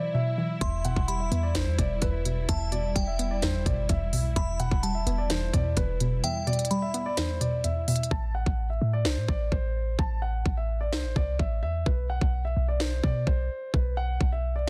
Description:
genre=hip hop, trap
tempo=128 BPM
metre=4/4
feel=half-time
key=E minor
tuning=A4 = 441 Hz
part: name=dark grand piano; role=melody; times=0.0-14.7 s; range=B4 to A5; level=-36 LUFS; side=equal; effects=delay
part: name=soft round pluck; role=accompaniment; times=0.0-8.1 s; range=E2 to B4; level=-32 LUFS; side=equal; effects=chorus
part: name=dark studio string section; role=sustained chords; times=0.0-8.1 s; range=F#3 to E4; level=-42 LUFS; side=equal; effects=none
part: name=glassy synth bell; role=second line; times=0.6-7.1 s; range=G5 to C6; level=-38 LUFS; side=equal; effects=chorus, tremolo, delay
part: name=clean 808-style bass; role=bass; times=0.6-14.7 s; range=E1 to B2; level=-31 LUFS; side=equal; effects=none
part: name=trap drum kit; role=drums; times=0.6-14.3 s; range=hi-hat, kick drum, snare drum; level=-30 LUFS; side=equal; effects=none
room=digital ambience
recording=dense, heavily limited modern master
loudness=-27 LUFS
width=mono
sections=0.0-8.1 A section; 8.1-14.7 B section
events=break 0.0-0.6; kick muted 6.2-8.1; hi-hats muted 8.1-14.7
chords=0.0 Bsus4; 0.6 Em; 8.1 Am; 11.9 B5

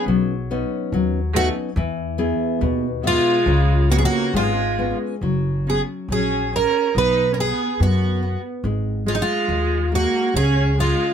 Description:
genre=fado-style ballad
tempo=70 BPM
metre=2/4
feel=rubato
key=F# major from 5.2 s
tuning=A4 = 440 Hz
part: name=picked twelve-string acoustic guitar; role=melody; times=0.0-11.1 s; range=D#4 to B4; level=-20 LUFS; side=right 1 dB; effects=none
part: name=rich viola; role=second line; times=0.0-11.1 s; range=F#3 to D#4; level=-26 LUFS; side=right 5 dB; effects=none
part: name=nylon-string guitar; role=accompaniment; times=0.0-11.1 s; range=B2 to E5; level=-25 LUFS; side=left 3 dB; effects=none
part: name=upright bass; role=bass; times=0.1-10.9 s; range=F#1 to F#2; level=-21 LUFS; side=equal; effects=none
room=light reverb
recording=close, detailed microphones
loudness=-18 LUFS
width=side -8 dB against mid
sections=0.0-5.2 A section; 5.2-11.1 B section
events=none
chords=0.0 Badd9; 1.8 E; 3.5 C#7; 5.2 F#5; 7.0 B5; 8.6 G#5; 10.3 C#5

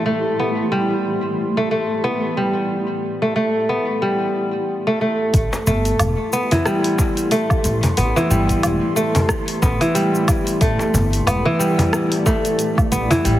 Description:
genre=organic downtempo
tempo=91 BPM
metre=4/4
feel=swing 57% on 16ths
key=A minor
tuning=A4 = 442 Hz
part: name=granular cloud pad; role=sustained chords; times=0.0-13.4 s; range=A3 to C6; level=-27 LUFS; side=right 1 dB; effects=built-in reverb, sidechain pumping
part: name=kora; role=arpeggios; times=0.0-13.4 s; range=E3 to B3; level=-18 LUFS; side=equal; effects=digital delay
part: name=bronze singing bowl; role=texture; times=0.0-4.7 s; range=E3 to E4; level=-41 LUFS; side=left 3 dB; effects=none
part: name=upright bass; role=bass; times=5.3-13.4 s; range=E1 to A1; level=-20 LUFS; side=equal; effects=none
part: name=afro-pop drum kit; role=drums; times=5.3-13.4 s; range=hi-hat, rim click, shaker, woodblock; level=-25 LUFS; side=equal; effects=none
part: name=electronic kick drum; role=drums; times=5.3-12.9 s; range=none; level=-19 LUFS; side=equal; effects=none
part: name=cajon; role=percussion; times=5.5-13.2 s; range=none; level=-21 LUFS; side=left 1 dB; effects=none
room=moderate lush hall reverb, RT60 2.6 s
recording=heavily compressed radio sound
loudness=-16 LUFS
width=side -13 dB against mid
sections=0.0-5.3 A section; 5.3-13.4 B section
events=none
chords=0.0 Am7

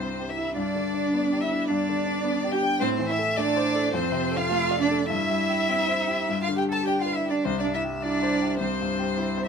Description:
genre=quick classical-period movement for piano quartet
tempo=104 BPM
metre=4/4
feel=rubato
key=C major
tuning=A4 = 439 Hz
part: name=rich violin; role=melody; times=0.0-9.5 s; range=C5 to A5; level=-30 LUFS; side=left 4 dB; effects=none
part: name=dark violin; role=second line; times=0.0-9.4 s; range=C5 to A5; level=-31 LUFS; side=equal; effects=none
part: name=rich cello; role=second line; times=0.0-9.5 s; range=C4 to A4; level=-27 LUFS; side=right 6 dB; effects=none
part: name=clear concert grand piano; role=accompaniment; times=0.0-9.5 s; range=C2 to D5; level=-28 LUFS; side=left 3 dB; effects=none
room=light reverb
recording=minimal, uncompressed stereo recording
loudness=-23 LUFS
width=side -6 dB against mid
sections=0.0-9.5 A section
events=none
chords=0.0 C; 0.6 G; 2.8 Am; 3.9 Dm7/F; 5.1 C/G; 6.3 G; 7.4 C

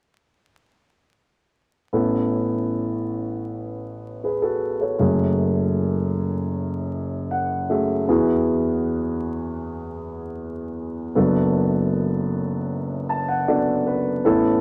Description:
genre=pop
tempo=78 BPM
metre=4/4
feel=straight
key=A major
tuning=A4 = 440 Hz
part: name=warm concert grand piano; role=solo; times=1.9-14.6 s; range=F#1 to A5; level=-23 LUFS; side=equal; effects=none
room=moderate club reverb, RT60 0.6 s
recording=vinyl crackle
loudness=-23 LUFS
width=mono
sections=1.9-14.2 A section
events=grand piano fill 6.9-8.1, 12.7-14.2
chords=1.9 Aadd9; 5.0 F#madd9; 8.1 Eadd9; 11.2 D6/F#

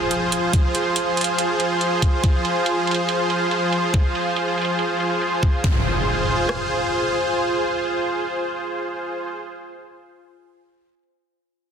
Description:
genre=heavy wobble dubstep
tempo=141 BPM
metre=4/4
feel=swing 55% on 16ths, half-time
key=F minor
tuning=A4 = 440 Hz
part: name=supersaw pad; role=sustained chords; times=0.0-9.3 s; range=F3 to C5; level=-21 LUFS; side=right 1 dB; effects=sidechain pumping
part: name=impact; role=sound effects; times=0.0-0.5, 5.6-9.3 s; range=none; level=-27 LUFS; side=equal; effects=none
part: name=warbly tape-like pad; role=texture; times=0.0-9.4 s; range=F4 to Ab5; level=-28 LUFS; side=equal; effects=chorus, built-in reverb, sidechain pumping
part: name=electronic hi-hat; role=drums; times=0.1-5.5 s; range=none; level=-26 LUFS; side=right 4 dB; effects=low-pass filter on hats, low-pass filter on cymbals, low-pass filter on snare
part: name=dubstep drum kit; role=drums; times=0.5-6.6 s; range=kick drum, rim click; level=-18 LUFS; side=equal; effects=none
room=moderate plate reverb, RT60 1.8 s, digital ambience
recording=dense, heavily limited modern master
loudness=-19 LUFS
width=side -7 dB against mid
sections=0.0-5.6 A section; 5.6-9.0 B section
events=fade-out on ambient pad 0.0-5.6; impact 0.0-0.5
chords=0.0 Fm

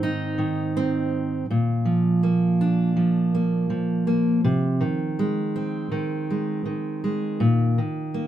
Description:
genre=folk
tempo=81 BPM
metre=4/4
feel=straight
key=Bb mixolydian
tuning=A4 = 440 Hz
part: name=fingerpicked steel-string acoustic guitar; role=solo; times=0.0-8.3 s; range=Ab2 to Eb4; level=-21 LUFS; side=right 1 dB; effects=none
room=moderate studio reverb, RT60 0.8 s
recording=minimal, uncompressed stereo recording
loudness=-21 LUFS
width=side -11 dB against mid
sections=0.0-1.5 A section; 1.5-8.3 B section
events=none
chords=0.0 Ab; 1.5 Bb; 4.4 Ab/C; 7.4 Eb5/Bb

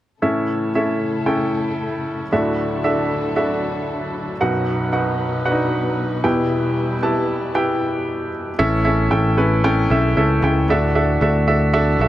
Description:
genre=piano-driven pop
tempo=115 BPM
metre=4/4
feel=straight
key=A mixolydian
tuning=A4 = 440 Hz
part: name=clear upright piano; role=accompaniment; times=0.2-12.1 s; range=B1 to A5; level=-18 LUFS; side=equal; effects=none
part: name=dark studio string section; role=sustained chords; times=0.2-8.6 s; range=B2 to B4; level=-27 LUFS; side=left 3 dB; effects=none
part: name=picked electric bass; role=bass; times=8.6-12.1 s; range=A1 to D2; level=-18 LUFS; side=equal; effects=none
room=light reverb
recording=none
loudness=-17 LUFS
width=side -13 dB against mid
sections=0.2-8.6 A section; 8.6-12.1 B section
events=none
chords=0.2 A; 2.3 Dadd9; 4.4 B; 6.2 Em; 8.6 A; 10.7 Dadd9

